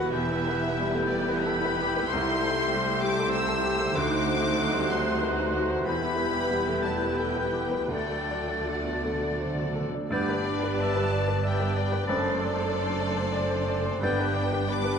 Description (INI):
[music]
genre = classical, romantic movement for piano and orchestra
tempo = 79-97 BPM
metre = 3/4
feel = rubato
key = G major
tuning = A4 = 441 Hz
[part]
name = clear baby grand piano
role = melody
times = 0.0-15.0 s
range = C2 to D5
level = -30 LUFS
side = left 1 dB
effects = none
[part]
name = warm studio violin section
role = melody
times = 0.0-15.0 s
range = D5 to E6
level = -34 LUFS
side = left 4 dB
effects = none
[part]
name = mellow cor anglais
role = second line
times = 0.0-15.0 s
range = A4 to E5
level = -37 LUFS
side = right 2 dB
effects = none
[part]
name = warm clarinet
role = second line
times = 0.0-14.3 s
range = D4 to D5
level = -38 LUFS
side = right 1 dB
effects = none
[part]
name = warm studio violin section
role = second line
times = 0.0-15.0 s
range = F#4 to D5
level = -36 LUFS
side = left 5 dB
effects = none
[part]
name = dark bassoon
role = accompaniment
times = 0.0-14.3 s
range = A3 to C4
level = -37 LUFS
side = right 1 dB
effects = none
[part]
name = warm studio viola section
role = accompaniment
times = 0.0-15.0 s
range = F#3 to F#4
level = -35 LUFS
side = right 1 dB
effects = none
[part]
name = mellow French horn section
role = sustained chords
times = 0.0-15.0 s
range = A3 to A4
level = -35 LUFS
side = left 3 dB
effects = none
[part]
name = warm studio cello section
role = bass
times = 0.0-15.0 s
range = C2 to G2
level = -35 LUFS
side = right 4 dB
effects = none
[part]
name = warm studio double bass section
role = bass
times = 0.0-15.0 s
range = E1 to D2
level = -35 LUFS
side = right 4 dB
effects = none
[part]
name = bright small flute group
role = second line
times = 0.1-14.3 s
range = F#6 to A6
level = -34 LUFS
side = equal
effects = none
[part]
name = timpani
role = percussion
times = 3.9-4.9, 7.9-11.1 s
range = G2 to D3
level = -37 LUFS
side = right 1 dB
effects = none
[sound]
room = moderate concert hall reverb, RT60 1.9 s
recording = none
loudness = -24 LUFS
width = side -6 dB against mid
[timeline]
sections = 0.0-10.1 A section; 10.1-15.0 B section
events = timpani fill 7.9-10.1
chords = 0.1 Em; 2.1 Am7/C; 3.9 D7b9; 5.9 Em; 7.9 D; 10.1 G; 12.1 D7/F#; 14.0 G